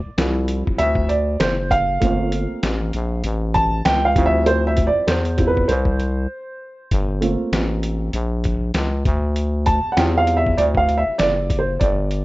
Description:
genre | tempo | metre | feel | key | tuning
hip hop, jazz-hop | 98 BPM | 4/4 | swing 57% on 16ths | unclear | A4 = 440 Hz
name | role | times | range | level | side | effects
dark upright piano | accompaniment | 0.0-12.2 s | F3 to A5 | -20 LUFS | right 2 dB | none
growling FM bass | bass | 0.1-12.2 s | F#1 to E2 | -21 LUFS | equal | none
trip hop sampler-style drum kit | drums | 0.2-12.2 s | hi-hat, kick drum, snare drum | -23 LUFS | equal | none
room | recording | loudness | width
little or no reverb | rough home demo mix, nothing above 7.9 kHz | -17 LUFS | side -19 dB against mid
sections
0.0-12.2 A section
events
upright piano solo 0.0-12.2; break 6.3-6.9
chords
0.0 Dm11; 2.0 Gm11; 4.2 Dm11; 6.9 Gm11; 9.1 Dm11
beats
0.18 0.79 1.40 | 2.02 2.63 3.24 3.85 | 4.46 5.08 5.69 6.30 | 6.91 7.53 8.14 8.75 | 9.36 9.97 10.59 11.20 | 11.81

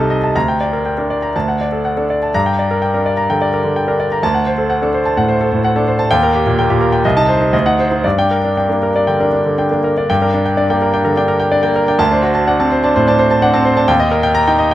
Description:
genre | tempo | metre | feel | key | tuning
classical, virtuoso piano study | 115-130 BPM | 4/4 | rubato | G minor | A4 = 440 Hz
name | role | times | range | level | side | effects
clear baby grand piano | solo | 0.0-14.7 s | C2 to Bb5 | -12 LUFS | equal | none
room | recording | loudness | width
moderate recital hall reverb, RT60 1.3 s | close, detailed microphones, faint mains hum | -12 LUFS | side -14 dB against mid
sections
0.0-10.1 A section; 10.1-14.7 A section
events
none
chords
0.3 Gm/D; 1.3 D; 2.3 Gm; 4.2 D7; 6.1 Eb; 7.0 Adim/C; 7.5 D7b9; 8.0 Gm; 12.0 D7; 13.9 Eb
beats
| 0.34 0.85 1.35 1.84 | 2.34 2.83 3.29 3.76 | 4.23 4.70 5.17 5.63 | 6.10 6.57 7.04 7.53 | 8.05 8.56 9.07 9.58 | 10.09 10.57 11.04 11.52 | 11.99 12.47 12.95 13.42 | 13.89 14.36

